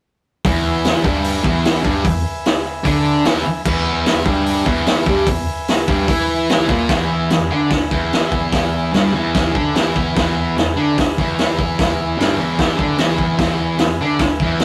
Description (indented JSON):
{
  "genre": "garage rock duo or trio",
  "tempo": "148 BPM",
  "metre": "4/4",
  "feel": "straight",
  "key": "E major, E mixolydian from 6.9 s",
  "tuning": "A4 = 440 Hz",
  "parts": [
    { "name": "raw garage drum kit", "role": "drums", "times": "0.4-14.6 s", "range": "crash cymbal, hi-hat, kick drum, snare drum", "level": "-20 LUFS", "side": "equal", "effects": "none" },
    { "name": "combo organ", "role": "sustained chords", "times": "0.5-14.6 s", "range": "B4 to G#5", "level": "-29 LUFS", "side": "equal", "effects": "none" },
    { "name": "fuzz guitar", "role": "riff", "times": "0.5-14.6 s", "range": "E2 to E4", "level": "-20 LUFS", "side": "equal", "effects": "distortion" }
  ],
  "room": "moderate studio reverb, RT60 0.6 s",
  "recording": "rough rehearsal-room recording, tube saturation",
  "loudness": "-17 LUFS",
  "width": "mono",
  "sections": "0.5-6.9 A section; 6.9-14.6 B section",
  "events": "none",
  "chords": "0.5 E"
}